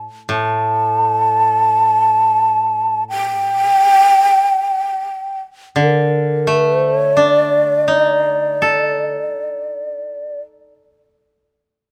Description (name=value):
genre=japanese traditional, Japanese chamber music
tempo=free time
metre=none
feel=none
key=unclear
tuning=A4 = 440 Hz
part: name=koto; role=accompaniment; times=0.0-11.5 s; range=A2 to A4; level=-21 LUFS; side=equal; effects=none
part: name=breathy mellow shakuhachi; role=melody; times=0.3-10.4 s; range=D5 to A5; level=-16 LUFS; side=equal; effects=none
room=light reverb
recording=close, detailed microphones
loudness=-15 LUFS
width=mono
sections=0.0-11.9 A section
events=none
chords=none